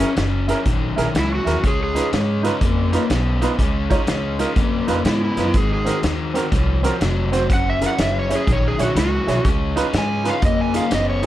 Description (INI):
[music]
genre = electric blues shuffle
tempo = 123 BPM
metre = 4/4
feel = swing 65% on 8ths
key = Db mixolydian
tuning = A4 = 440 Hz
[part]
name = overdriven slide guitar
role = melody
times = 0.0-2.1, 5.1-11.2 s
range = Db4 to Ab5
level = -23 LUFS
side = right 1 dB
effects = plate reverb
[part]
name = warm grand piano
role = accompaniment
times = 0.0-11.3 s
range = C4 to Db5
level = -24 LUFS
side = right 4 dB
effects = plate reverb
[part]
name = overdriven electric guitar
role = riff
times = 0.0-11.3 s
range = Gb2 to Cb4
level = -24 LUFS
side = left 4 dB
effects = none
[part]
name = vintage drum kit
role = drums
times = 0.0-11.3 s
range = hi-hat, kick drum, snare drum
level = -23 LUFS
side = equal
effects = none
[part]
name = upright bass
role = bass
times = 0.2-11.3 s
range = F1 to Ab2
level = -22 LUFS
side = equal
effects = none
[sound]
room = light reverb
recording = none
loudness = -17 LUFS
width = side -13 dB against mid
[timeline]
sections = 0.0-11.3 A section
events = none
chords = 0.0 Gb7; 1.6 Db7; 5.5 Ab7; 7.5 Gb7; 9.4 Db7